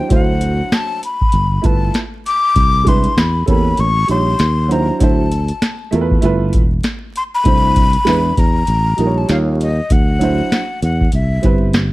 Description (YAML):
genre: hip hop, jazz-hop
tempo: 98 BPM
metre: 4/4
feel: swing 57% on 16ths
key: unclear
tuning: A4 = 438 Hz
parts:
  - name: breathy jazz flute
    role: melody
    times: 0.0-11.7 s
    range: Eb5 to D6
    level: -18 LUFS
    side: left 3 dB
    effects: none
  - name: warm upright piano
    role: accompaniment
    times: 0.0-11.8 s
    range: F#3 to C#5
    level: -19 LUFS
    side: right 4 dB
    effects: none
  - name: sustaining fretless electric bass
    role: bass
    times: 0.1-11.9 s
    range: E1 to E2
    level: -16 LUFS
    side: equal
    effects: none
  - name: booming analog drum machine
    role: drums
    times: 0.1-11.9 s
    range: hi-hat, kick drum, snare drum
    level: -16 LUFS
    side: equal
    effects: none
room: studio reverb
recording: dark, warm production, vinyl crackle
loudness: -12 LUFS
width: side -18 dB against mid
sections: 0.0-11.9 A section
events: none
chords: 0.1 D9; 1.3 G13; 2.6 Cadd9; 3.2 E5; 3.8 A7b9; 4.4 Eb5; 5.0 D9; 6.2 G13; 7.5 C69; 8.1 E7; 8.7 A7b9; 9.3 Eb9; 9.9 D9; 11.1 Cmaj7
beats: | 0.11 0.72 1.33 1.94 | 2.56 3.17 3.78 4.39 | 5.00 5.62 6.23 6.84 | 7.45 8.07 8.68 9.29 | 9.90 10.52 11.13 11.74